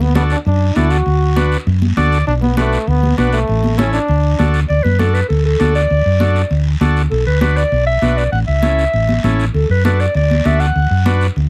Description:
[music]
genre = latin, cumbia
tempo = 198 BPM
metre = 4/4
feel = straight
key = D major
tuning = A4 = 440 Hz
[part]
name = bright trombone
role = second line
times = 0.0-4.5 s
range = A3 to F#4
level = -22 LUFS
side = equal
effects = none
[part]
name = hollow-body short-scale fingered electric bass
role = bass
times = 0.0-11.5 s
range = A1 to F#2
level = -17 LUFS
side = equal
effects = none
[part]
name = congas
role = percussion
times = 0.0-11.5 s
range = none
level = -22 LUFS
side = equal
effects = none
[part]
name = overdriven combo organ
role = accompaniment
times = 0.2-11.3 s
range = C#4 to D5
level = -22 LUFS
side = equal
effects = none
[part]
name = guiro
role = percussion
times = 0.2-11.5 s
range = none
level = -34 LUFS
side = equal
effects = none
[part]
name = warm clarinet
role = melody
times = 4.7-11.2 s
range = A4 to F#5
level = -20 LUFS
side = equal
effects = none
[sound]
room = light reverb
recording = close, detailed microphones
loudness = -15 LUFS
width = mono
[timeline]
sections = 0.0-4.7 A section; 4.7-11.5 B section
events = trombone solo 0.0-4.7; transistor combo organ fill 1.8-2.3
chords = 0.0 D; 2.3 Bm7; 3.5 A; 4.1 D; 7.1 Bm; 8.3 A; 9.5 D

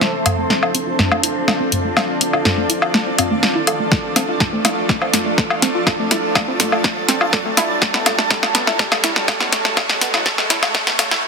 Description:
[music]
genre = melodic techno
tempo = 123 BPM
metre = 4/4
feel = straight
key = unclear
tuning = A4 = 443 Hz
[part]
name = evolving wavetable pad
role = sustained chords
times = 0.0-11.3 s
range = F3 to A4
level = -24 LUFS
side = right 1 dB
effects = chorus, built-in reverb, sidechain pumping
[part]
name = warbly dusty pluck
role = arpeggios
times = 0.0-11.2 s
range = A3 to A4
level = -24 LUFS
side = equal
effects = chorus, sidechain pumping, ping-pong delay
[part]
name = house drum kit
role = drums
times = 0.0-11.2 s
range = hi-hat, snare drum, toms, woodblock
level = -17 LUFS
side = left 1 dB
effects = small room reverb
[part]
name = riser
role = sound effects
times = 0.1-11.2 s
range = none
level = -29 LUFS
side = right 1 dB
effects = none
[part]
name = granular cloud pad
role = texture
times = 0.0-11.2 s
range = F4 to A5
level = -23 LUFS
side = right 1 dB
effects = built-in reverb, sidechain pumping
[part]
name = electronic kick drum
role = drums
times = 3.9-10.8 s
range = none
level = -22 LUFS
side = equal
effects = overdrive, small room reverb
[sound]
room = moderate lush hall reverb, RT60 2.1 s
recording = dense, heavily limited modern master, high-pass filter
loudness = -14 LUFS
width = side -5 dB against mid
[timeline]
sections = 0.0-11.3 A section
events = build-up 0.0-11.3; drum fill 0.0-11.2; filter sweep on synth arpeggio sound 0.0-11.3; filter sweep 0.0-11.3; riser 0.1-11.2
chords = 0.0 F6; 7.8 F#m

